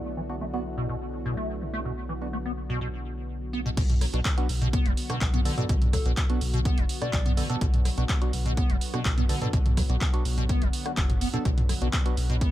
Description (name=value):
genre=acid house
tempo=125 BPM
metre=4/4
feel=straight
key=B minor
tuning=A4 = 439 Hz
part: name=lush unison pad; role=sustained chords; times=0.0-12.5 s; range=D3 to B4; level=-37 LUFS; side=left 1 dB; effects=chorus, sidechain pumping
part: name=round analog bass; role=bass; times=0.0-12.5 s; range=F#1 to B1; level=-30 LUFS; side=equal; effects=sidechain pumping
part: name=deep dark ambient pad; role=texture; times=0.0-3.8 s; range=E4 to F#5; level=-42 LUFS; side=right 2 dB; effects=chorus, built-in reverb, sidechain pumping
part: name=liquid acid bass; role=riff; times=0.2-12.5 s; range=B2 to B3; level=-32 LUFS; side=equal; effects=tube saturation, wide subtle chorus, sidechain pumping, tape echo
part: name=percussive organ stab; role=stabs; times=0.3-12.2 s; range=B3 to A4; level=-36 LUFS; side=right 2 dB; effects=chorus, phaser, tape echo
part: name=electronic kick drum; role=drums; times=3.8-12.5 s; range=none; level=-25 LUFS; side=equal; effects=none
part: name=punchy analog drum machine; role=drums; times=3.8-12.5 s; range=crash cymbal, handclaps, hi-hat, rim click, toms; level=-32 LUFS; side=right 1 dB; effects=none
part: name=soft struck synth lead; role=melody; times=5.9-7.5 s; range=A4 to D5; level=-37 LUFS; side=left 3 dB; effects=chorus, tape echo
room=little or no reverb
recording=none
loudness=-24 LUFS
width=side -14 dB against mid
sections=0.0-3.8 A section; 3.8-12.5 B section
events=drop 3.8-12.5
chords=0.0 Bm